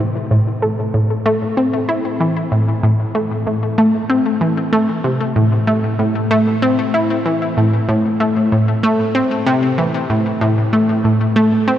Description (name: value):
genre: ambient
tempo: 95 BPM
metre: 4/4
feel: straight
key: A minor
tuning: A4 = 440 Hz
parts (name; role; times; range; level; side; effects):
- analog pluck; solo; 0.0-11.8 s; A2 to E4; -14 LUFS; equal; chorus, ping-pong delay
room: wet huge ambient reverb, RT60 7.0 s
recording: worn, warbling old tape, cassette tape, warbly pitch drift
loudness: -14 LUFS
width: side -11 dB against mid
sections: 0.0-11.8 A section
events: none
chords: none